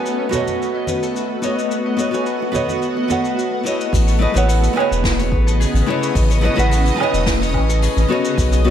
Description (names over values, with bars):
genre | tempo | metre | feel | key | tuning
sunset chillout | 108 BPM | 4/4 | straight | A lydian | A4 = 440 Hz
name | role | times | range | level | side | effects
nylon-string guitar | accompaniment | 0.0-8.7 s | A3 to G#5 | -21 LUFS | moving between left 4 dB and right 6 dB | auto-pan, tape echo
shimmering ambient pad | sustained chords | 0.0-8.7 s | C#3 to D#5 | -23 LUFS | equal | chorus, built-in reverb, phaser
Celtic harp | arpeggios | 0.0-8.7 s | F#4 to D#5 | -25 LUFS | left 5 dB | tape echo
jazz brush drum kit | drums | 0.1-8.6 s | hi-hat, shaker, snare drum, woodblock | -27 LUFS | left 1 dB | none
congas and bongos | percussion | 0.3-3.2 s | none | -30 LUFS | left 1 dB | none
round analog bass | bass | 3.9-8.7 s | E1 to B1 | -16 LUFS | equal | none
electronic kick drum | drums | 3.9-8.5 s | none | -22 LUFS | equal | none
room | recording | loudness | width
light reverb, small room ambience | none | -15 LUFS | side -10 dB against mid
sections
0.0-3.9 A section; 3.9-8.7 B section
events
none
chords
0.0 Amaj9#11